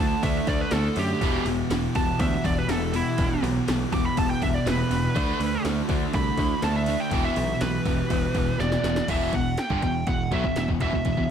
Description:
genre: heavy metal.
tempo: 122 BPM.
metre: 4/4.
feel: straight.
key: E minor.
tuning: A4 = 440 Hz.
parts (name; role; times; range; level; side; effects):
high-gain lead guitar; melody; 0.0-11.3 s; E4 to D6; -29 LUFS; right 2 dB; distortion.
warm analog pad; sustained chords; 0.0-9.1 s; D3 to F#5; -39 LUFS; equal; none.
distorted electric guitar; riff; 0.0-11.3 s; E2 to D4; -31 LUFS; left 2 dB; distortion.
high-gain distorted guitar; riff; 0.0-11.3 s; E2 to D4; -30 LUFS; right 11 dB; distortion.
tight distorted guitar; riff; 0.0-11.3 s; E2 to D4; -31 LUFS; left 12 dB; distortion.
modern bright picked electric bass; bass; 0.0-11.3 s; E1 to F#2; -29 LUFS; equal; none.
80s electronic pad drums; drums; 0.2-11.2 s; crash cymbal, kick drum, ride cymbal, snare drum; -29 LUFS; equal; none.
room: little or no reverb.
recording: none.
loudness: -22 LUFS.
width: side -8 dB against mid.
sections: 0.0-9.1 A section; 9.1-11.3 B section.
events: lead electric guitar solo 0.0-9.1; drum fill 8.6-9.1.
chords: 0.0 D; 1.2 Em; 5.2 D; 7.1 Em.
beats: 0.23 0.72 | 1.22 1.71 2.20 2.69 | 3.19 3.68 4.17 4.66 | 5.15 5.64 6.14 6.63 | 7.12 7.61 8.10 8.60 | 9.09 9.58 10.07 10.56 | 11.06.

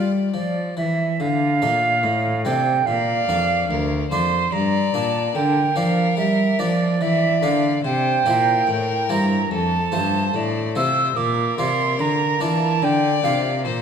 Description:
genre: classical, baroque-style sonata movement with continuo.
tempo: 72 BPM.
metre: 4/4.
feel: straight.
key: D minor.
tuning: A4 = 440 Hz.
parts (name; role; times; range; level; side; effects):
rich violin; melody; 0.0-13.8 s; A4 to D5; -26 LUFS; left 7 dB; none.
silver concert flute; second line; 0.0-13.7 s; F4 to E6; -21 LUFS; right 4 dB; none.
harpsichord; accompaniment; 0.0-13.8 s; D2 to D5; -25 LUFS; left 3 dB; none.
rich cello; bass; 0.0-13.8 s; D2 to G3; -23 LUFS; right 1 dB; none.
room: wet concert hall reverb, RT60 1.8 s.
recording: none.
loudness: -18 LUFS.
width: side -7 dB against mid.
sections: 0.0-1.2 A section; 1.2-13.8 B section.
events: none.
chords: 0.0 Dm; 2.9 Bb; 4.5 Gm; 7.8 C7; 9.5 F; 11.2 Bb.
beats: 0.34 | 1.21 2.04 2.87 3.70 | 4.53 5.35 6.18 7.01 | 7.85 8.68 9.51 10.34 | 11.17 12.00 12.83 13.66.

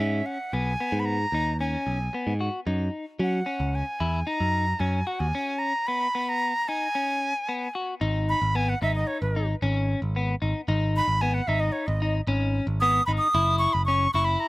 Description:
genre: progressive instrumental, band music in an uneven meter.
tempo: 112 BPM.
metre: 5/4.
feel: straight.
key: G# minor.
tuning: A4 = 440 Hz.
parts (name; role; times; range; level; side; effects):
breathy bright jazz flute; melody; 0.0-14.5 s; B4 to D#6; -26 LUFS; equal; slapback echo.
electric guitar at the edge of break-up; arpeggios; 0.0-14.5 s; B3 to F#4; -30 LUFS; left 2 dB; slapback echo.
modern bright picked electric bass; bass; 0.0-14.4 s; F#1 to F#3; -26 LUFS; equal; none.
room: little or no reverb.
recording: recorded outdoors, with no room sound.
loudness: -23 LUFS.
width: side -20 dB against mid.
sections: 0.0-8.0 A section; 8.0-14.5 B section.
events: flute solo 8.0-14.5.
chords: 0.0 Bmaj13; 2.7 F#7; 5.3 G#m; 8.0 G#madd11; 13.3 F#5.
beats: | 0.00 0.53 1.07 1.60 2.13 | 2.67 3.20 3.74 4.27 4.81 | 5.34 5.88 6.41 6.95 7.48 | 8.01 8.55 9.08 9.61 10.15 | 10.68 11.21 11.74 12.28 12.81 | 13.34 13.87 14.41.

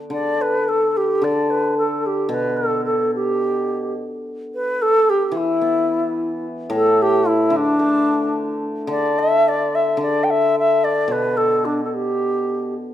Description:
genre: chinese traditional.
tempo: 110 BPM.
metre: 2/4.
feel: straight.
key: unclear.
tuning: A4 = 440 Hz.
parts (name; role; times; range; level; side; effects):
hammered dulcimer; accompaniment; 0.0-12.7 s; A2 to B3; -22 LUFS; left 2 dB; none.
bright reedy low xiao; melody; 0.1-12.7 s; D4 to G5; -18 LUFS; equal; none.
room: moderate recital hall reverb, RT60 1.5 s.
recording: none.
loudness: -17 LUFS.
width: side -11 dB against mid.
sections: 0.0-4.5 A section; 4.5-12.9 B section.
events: none.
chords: none.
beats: | 0.12 0.68 | 1.23 1.78 | 2.32 2.87 | 3.41 3.96 | 4.52 5.07 | 5.62 6.17 | 6.71 7.25 | 7.79 8.34 | 8.89 9.45 | 10.00 10.54 | 11.08 11.62 | 12.17 12.72.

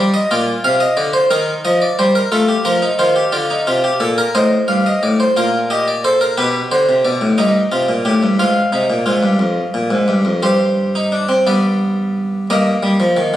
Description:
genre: classical, baroque-style 3-part fugue for harpsichord.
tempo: 59 BPM (dotted quarters).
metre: 6/8.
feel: straight.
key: unclear.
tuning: A4 = 440 Hz.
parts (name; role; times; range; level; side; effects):
harpsichord; solo; 0.0-13.4 s; F2 to F5; -13 LUFS; equal; none.
room: moderate recital hall reverb, RT60 1.4 s.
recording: recorded on a phone in the room, studio reverb, compression.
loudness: -13 LUFS.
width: side -12 dB against mid.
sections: 0.0-4.4 A section; 4.4-12.5 B section.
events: none.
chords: 0.3 Bb; 1.3 Eb; 2.3 F7; 3.3 Bb; 4.4 F7; 5.4 Bb; 6.4 G/B; 7.4 Cm/G; 8.4 Fm; 10.4 Gsus4; 11.5 G; 12.5 Ebadd9/G.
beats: | 0.32 1.32 | 2.33 3.34 | 4.36 5.37 | 6.38 7.39 | 8.39 9.40 | 10.44 11.47 | 12.50.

